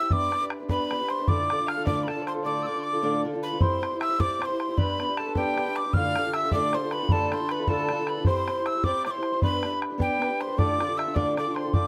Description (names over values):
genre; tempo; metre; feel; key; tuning
celtic folk, Celtic jig; 103 BPM (dotted quarters); 6/8; straight; D dorian; A4 = 440 Hz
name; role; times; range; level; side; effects
breathy mid whistle; melody; 0.0-11.9 s; G5 to F6; -31 LUFS; equal; none
dark fiddle; second line; 0.0-11.9 s; G4 to F5; -37 LUFS; equal; none
hammered dulcimer; second line; 0.0-11.9 s; G4 to F5; -37 LUFS; equal; none
picked acoustic archtop guitar; accompaniment; 0.0-11.9 s; D2 to C5; -32 LUFS; equal; none
bodhran; percussion; 0.1-11.8 s; none; -28 LUFS; equal; none
room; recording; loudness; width
moderate studio reverb, RT60 0.6 s; none; -26 LUFS; mono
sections
0.0-3.6 A section; 3.6-11.9 A section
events
none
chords
0.1 G/B; 1.3 Dm; 3.6 C; 4.8 G/B; 5.9 Dm; 8.3 C; 9.4 G/B; 10.6 Dm